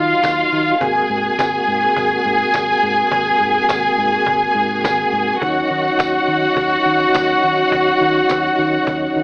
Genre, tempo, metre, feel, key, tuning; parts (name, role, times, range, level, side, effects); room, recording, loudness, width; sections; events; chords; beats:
disco; 104 BPM; 4/4; straight; Eb dorian; A4 = 440 Hz
rich studio string section; second line; 0.0-9.2 s; F4 to Ab5; -15 LUFS; equal
tonewheel organ; sustained chords; 0.0-9.2 s; C3 to Gb4; -21 LUFS; equal; overdrive, chorus vibrato, slow rotary speaker
vintage muted fingered electric bass; bass; 0.0-9.2 s; Ab1 to Eb3; -27 LUFS; equal
cajon; drums; 0.1-9.0 s; -23 LUFS; equal
tambourine; percussion; 0.2-8.4 s; -33 LUFS; right 1 dB
moderate large studio reverb, RT60 1.1 s, studio ambience; AM radio sound; -14 LUFS; side -29 dB against mid
0.0-9.2 A section
0.0 Ebmadd9; 0.8 Ab9; 5.4 Ebm7
0.23 | 0.81 1.38 1.96 2.54 | 3.11 3.69 4.27 4.84 | 5.42 6.00 6.57 7.15 | 7.72 8.29 8.87